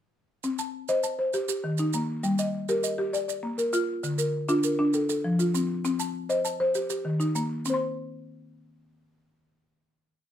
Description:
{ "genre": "southern african traditional, mbira-style interlocking cycle", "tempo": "133 BPM (dotted quarters)", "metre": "12/8", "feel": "straight", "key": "C dorian", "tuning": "A4 = 441 Hz", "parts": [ { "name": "buzzing marimba with medium mallets", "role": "arpeggios", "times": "0.4-10.3 s", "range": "D3 to C6", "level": "-25 LUFS", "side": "left 1 dB", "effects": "none" }, { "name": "maracas", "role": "percussion", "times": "0.4-7.8 s", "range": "none", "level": "-36 LUFS", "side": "right 10 dB", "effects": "none" } ], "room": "moderate studio reverb, RT60 0.6 s", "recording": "none", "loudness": "-25 LUFS", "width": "side -10 dB against mid", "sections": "0.4-7.7 A section; 7.7-10.3 final note", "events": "none", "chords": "0.4 Cm; 1.3 Eb; 2.2 Gm; 3.1 Bb; 4.0 Dm; 4.9 F; 5.8 Cm; 6.7 Eb; 7.7 N.C." }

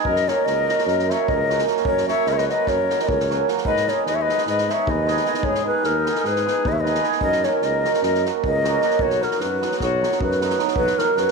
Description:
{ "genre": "balkan folk, Balkan wedding band", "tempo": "303 BPM (eighths)", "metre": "9/8", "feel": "straight", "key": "unclear", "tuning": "A4 = 440 Hz", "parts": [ { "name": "warm trumpet", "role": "second line", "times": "0.0-11.3 s", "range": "F#3 to C#5", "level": "-28 LUFS", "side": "left 10 dB", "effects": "none" }, { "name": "cimbalom", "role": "accompaniment", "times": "0.0-11.3 s", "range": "D#3 to G#4", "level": "-23 LUFS", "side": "right 10 dB", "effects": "none" }, { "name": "warm tuba", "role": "bass", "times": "0.0-11.3 s", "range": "B1 to G#2", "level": "-27 LUFS", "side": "left 1 dB", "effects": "none" }, { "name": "breathy low ney", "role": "melody", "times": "0.1-11.3 s", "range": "A#4 to E5", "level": "-22 LUFS", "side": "left 2 dB", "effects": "slapback echo" }, { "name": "unplugged drum kit", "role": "percussion", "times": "0.1-11.3 s", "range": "kick drum, snare drum", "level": "-30 LUFS", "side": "left 1 dB", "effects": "none" } ], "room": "moderate echo chamber reverb, RT60 2.0 s, studio reverb", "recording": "1960s-style stereo with parts hard left and right", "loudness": "-18 LUFS", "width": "side -4 dB against mid", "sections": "0.0-10.8 A section", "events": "none", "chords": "0.1 F#; 3.6 G#m; 7.2 F#; 9.0 B" }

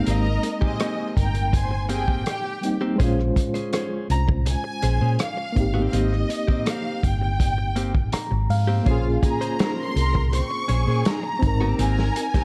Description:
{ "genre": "lush 1970s-style soul", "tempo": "82 BPM", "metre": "4/4", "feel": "straight", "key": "Ab major", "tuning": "A4 = 440 Hz", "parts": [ { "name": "warm studio violin section", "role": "melody", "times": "0.0-12.4 s", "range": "Eb5 to Db6", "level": "-32 LUFS", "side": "equal", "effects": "none" }, { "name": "reed electric piano", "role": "accompaniment", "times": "0.0-12.4 s", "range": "G3 to Bb5", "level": "-30 LUFS", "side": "equal", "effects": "medium tremolo" }, { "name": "direct-recorded clean electric guitar", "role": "riff", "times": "0.0-12.4 s", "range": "Bb3 to C5", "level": "-33 LUFS", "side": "equal", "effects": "none" }, { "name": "warm studio string section", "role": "second line", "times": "0.1-2.8, 8.9-12.4 s", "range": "Ab3 to C6", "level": "-35 LUFS", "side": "equal", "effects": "none" }, { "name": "hollow-body short-scale fingered electric bass", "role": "bass", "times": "0.1-12.1 s", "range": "G1 to Bb2", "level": "-25 LUFS", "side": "equal", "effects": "none" }, { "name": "vintage drum kit", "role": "drums", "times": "0.1-12.4 s", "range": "hi-hat, kick drum, rim click, snare drum", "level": "-27 LUFS", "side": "equal", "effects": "none" } ], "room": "light reverb, small room ambience", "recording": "dark, warm production", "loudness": "-23 LUFS", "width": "mono", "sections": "0.0-12.4 A section", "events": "reed electric piano fill 7.8-8.9", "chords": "0.0 Abmaj9; 3.0 Bbm9; 5.6 Abmaj9; 8.9 Bbm9; 11.4 Abmaj9" }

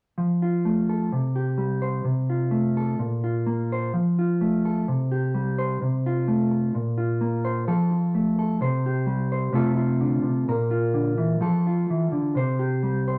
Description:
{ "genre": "highlife", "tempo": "128 BPM", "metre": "4/4", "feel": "swing 54% on 16ths", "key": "F major", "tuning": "A4 = 438 Hz", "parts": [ { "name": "mellow electric guitar", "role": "solo", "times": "0.2-13.2 s", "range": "Bb2 to C5", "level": "-24 LUFS", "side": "equal", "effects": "none" } ], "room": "wet large studio reverb, RT60 0.9 s", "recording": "none", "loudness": "-24 LUFS", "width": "mono", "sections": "0.2-7.7 A section; 7.7-13.2 B section", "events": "none", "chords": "0.2 F; 1.1 C5; 2.1 F/C; 3.0 Bb5; 3.9 F; 4.9 C5; 5.8 F/C; 6.7 Bb5; 7.7 F; 8.6 C5; 9.6 F/C; 10.5 Bb; 11.4 F; 12.4 C5" }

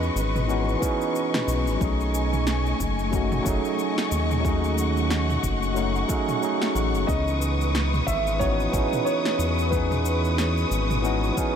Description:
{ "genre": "sunset chillout", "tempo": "91 BPM", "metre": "4/4", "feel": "swing 58% on 16ths", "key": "C# minor", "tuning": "A4 = 443 Hz", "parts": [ { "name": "tine electric piano", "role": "accompaniment", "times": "0.0-11.6 s", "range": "E3 to G#4", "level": "-26 LUFS", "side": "moving between left 5 dB and right 4 dB", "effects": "auto-pan, analog delay" }, { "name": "dark symphonic string section", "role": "sustained chords", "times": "0.0-11.6 s", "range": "A3 to D#6", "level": "-29 LUFS", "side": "left 2 dB", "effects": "vintage 12-bit sampler grit" }, { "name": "round analog bass", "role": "bass", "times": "0.0-11.3 s", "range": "F#1 to E2", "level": "-26 LUFS", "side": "equal", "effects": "none" }, { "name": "deep house drum kit", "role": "drums", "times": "0.0-11.5 s", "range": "cabasa, snare drum, toms", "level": "-32 LUFS", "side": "equal", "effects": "overdrive" }, { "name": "electronic kick drum", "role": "drums", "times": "0.8-11.5 s", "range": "none", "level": "-28 LUFS", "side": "equal", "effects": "overdrive" }, { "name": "dark baby grand piano", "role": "melody", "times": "7.1-10.3 s", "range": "B4 to E5", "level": "-29 LUFS", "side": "right 1 dB", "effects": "analog chorus, diffuse ambient delay" } ], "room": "moderate huge ambient reverb, RT60 8.1 s", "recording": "dreamy mix soaked in reverb", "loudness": "-21 LUFS", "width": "side -8 dB against mid", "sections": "0.0-11.6 A section", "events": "none", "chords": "0.0 C#m9; 1.8 B13; 7.1 C#m9" }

